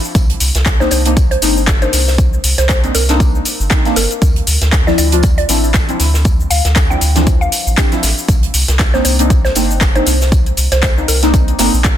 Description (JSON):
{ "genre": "deep house", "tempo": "118 BPM", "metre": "4/4", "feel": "swing 57% on 16ths", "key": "unclear", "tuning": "A4 = 441 Hz", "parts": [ { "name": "deep house drum kit", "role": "drums", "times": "0.0-12.0 s", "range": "handclaps, hi-hat, shaker", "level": "-17 LUFS", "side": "left 1 dB", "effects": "overdrive" }, { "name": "round analog bass", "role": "bass", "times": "0.1-12.0 s", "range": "G1 to D2", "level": "-15 LUFS", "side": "equal", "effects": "sidechain pumping" }, { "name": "big rock drum kit", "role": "drums", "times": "0.1-12.0 s", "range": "hi-hat, snare drum, tambourine", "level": "-25 LUFS", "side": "right 2 dB", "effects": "sidechain pumping on hats, high-pass filter on hats, soft clipping on snare, high-pass filter on snare, sidechain pumping on perc, high-pass filter on perc, high-pass filter on room" }, { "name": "electronic kick drum", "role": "drums", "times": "0.1-12.0 s", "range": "none", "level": "-14 LUFS", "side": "equal", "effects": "overdrive" }, { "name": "mallet-like synth pluck", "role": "melody", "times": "0.8-11.2 s", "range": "Bb4 to G5", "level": "-21 LUFS", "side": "equal", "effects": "chorus, ping-pong delay" }, { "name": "deep mellow chord stab", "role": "stabs", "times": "0.8-11.7 s", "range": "E3 to G4", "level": "-18 LUFS", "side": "left 1 dB", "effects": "chorus, phaser, sidechain pumping, ping-pong delay" } ], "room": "little or no reverb", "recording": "dense, heavily limited modern master", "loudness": "-10 LUFS", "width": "side -11 dB against mid", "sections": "0.0-12.0 A section", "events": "none", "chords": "0.1 Cm9; 4.2 Dm9; 8.3 Cm9" }